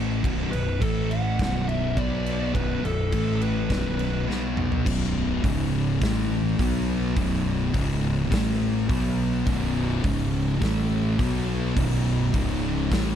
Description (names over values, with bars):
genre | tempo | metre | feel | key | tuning
stoner and doom metal | 104 BPM | 4/4 | straight | unclear | A4 = 437 Hz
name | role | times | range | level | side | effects
thick fuzz guitar | riff | 0.0-13.2 s | B1 to B3 | -28 LUFS | left 9 dB | distortion
thick fuzz guitar | riff | 0.0-13.2 s | B1 to B3 | -28 LUFS | right 7 dB | distortion
fuzz fingered electric bass | bass | 0.0-13.2 s | B0 to B1 | -29 LUFS | equal | overdrive
big rock drum kit | drums | 0.2-13.1 s | crash cymbal, hi-hat, kick drum, snare drum, toms | -28 LUFS | equal | none
fuzz lead guitar | melody | 0.5-4.2 s | A4 to F#5 | -32 LUFS | left 2 dB | distortion, analog delay
thick fuzz guitar | riff | 9.5-13.2 s | B1 to B3 | -31 LUFS | left 1 dB | distortion
room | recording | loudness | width
small room ambience | dark, warm production | -22 LUFS | side -9 dB against mid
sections
0.0-4.9 A section; 4.9-13.2 B section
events
drum fill 4.3-4.9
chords
0.2 B5; 0.8 A5; 1.4 Bm; 3.1 A5; 3.7 B5; 5.4 C#5; 6.0 A5; 6.6 B5; 7.7 C#5; 8.3 A5; 8.9 B5; 10.0 C#5; 10.6 A5; 11.2 B5; 12.3 C#5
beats
| 0.24 0.81 1.39 1.97 | 2.55 3.12 3.70 4.28 | 4.86 5.43 6.01 6.59 | 7.17 7.74 8.32 8.89 | 9.47 10.04 10.62 11.19 | 11.77 12.34 12.92